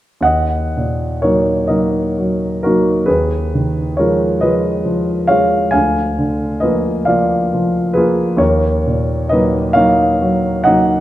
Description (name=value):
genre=classical, romantic nocturne for solo piano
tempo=45 BPM (dotted quarters)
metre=6/8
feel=rubato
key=Eb minor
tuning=A4 = 440 Hz
part: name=warm grand piano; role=solo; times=0.2-11.0 s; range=D2 to Ab5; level=-13 LUFS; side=equal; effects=none
room=moderate recital hall reverb, RT60 1.7 s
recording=none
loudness=-13 LUFS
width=side -14 dB against mid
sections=0.3-11.0 A section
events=none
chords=0.3 Ebm; 3.1 Fm7b5/Eb; 5.7 Bb7/D; 8.4 Ebm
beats=| 0.26 1.71 | 3.07 4.43 | 5.74 7.08 | 8.41 9.77